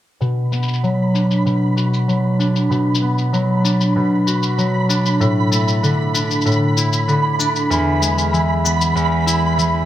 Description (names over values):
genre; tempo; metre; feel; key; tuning
folktronica; 96 BPM; 4/4; straight; B minor; A4 = 439 Hz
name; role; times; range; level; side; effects
concert harp; arpeggios; 0.2-9.9 s; E2 to F#4; -16 LUFS; equal; low-pass filter, digital delay
shaker; drums; 0.2-9.7 s; none; -24 LUFS; left 5 dB; low-pass filter on perc, low-pass filter on room
flickering grainy texture; texture; 0.5-9.9 s; B5; -23 LUFS; right 3 dB; built-in reverb
room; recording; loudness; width
moderate concert hall reverb, RT60 2.0 s; none; -15 LUFS; side -12 dB against mid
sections
0.2-9.9 A section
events
filter sweep on harp 0.2-9.9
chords
0.2 Bm; 5.2 Asus4; 7.7 E